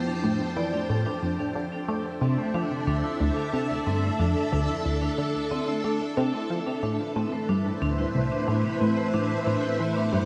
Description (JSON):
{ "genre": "ambient, sequencer-driven space music", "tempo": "91 BPM", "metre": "4/4", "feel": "straight", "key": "D dorian", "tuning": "A4 = 438 Hz", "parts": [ { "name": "string machine, full ensemble", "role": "sustained chords", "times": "0.0-10.3 s", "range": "F3 to A5", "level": "-31 LUFS", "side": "equal", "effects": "ensemble chorus, shimmer reverb" }, { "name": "tight sequenced synth", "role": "riff", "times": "0.0-10.3 s", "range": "C2 to A3", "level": "-30 LUFS", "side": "equal", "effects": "chorus, phaser, delay, shimmer reverb" }, { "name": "vibraphone with medium mallets", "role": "arpeggios", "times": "0.1-10.3 s", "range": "A3 to D5", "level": "-35 LUFS", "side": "equal", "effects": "delay, shimmer reverb" } ], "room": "moderate plate reverb, RT60 3.1 s", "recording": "none", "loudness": "-27 LUFS", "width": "mono", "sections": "0.0-10.3 A section", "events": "none", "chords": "0.0 Fadd9; 1.6 Dmadd9; 6.8 Am7" }